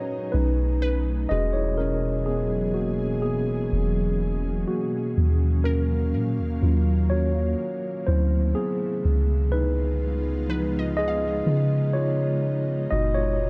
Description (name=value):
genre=R&B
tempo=62 BPM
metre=4/4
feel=straight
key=unclear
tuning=A4 = 440 Hz
part: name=mellow tine electric piano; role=accompaniment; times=0.0-13.5 s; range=Bb2 to Eb5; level=-29 LUFS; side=equal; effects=none
part: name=ethereal airy pad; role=sustained chords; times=0.0-13.5 s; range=B2 to Bb5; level=-33 LUFS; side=equal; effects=ensemble chorus, built-in reverb
part: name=soft 808-style bass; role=bass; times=0.3-13.5 s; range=E1 to Db3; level=-26 LUFS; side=equal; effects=none
part: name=glassy wavetable pluck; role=texture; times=0.8-12.8 s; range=Bb4 to F5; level=-40 LUFS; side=equal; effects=chorus, delay
room=light reverb, digital ambience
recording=dark, warm production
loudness=-24 LUFS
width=mono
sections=0.0-13.5 A section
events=tine electric piano solo 0.0-13.5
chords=0.3 B9; 1.3 E6; 5.2 Ebm7; 8.1 D9; 9.0 Db7; 12.9 Gb69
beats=0.33 | 1.30 2.27 3.24 4.20 | 5.17 6.14 7.11 8.07 | 9.04 10.01 10.98 11.95 | 12.91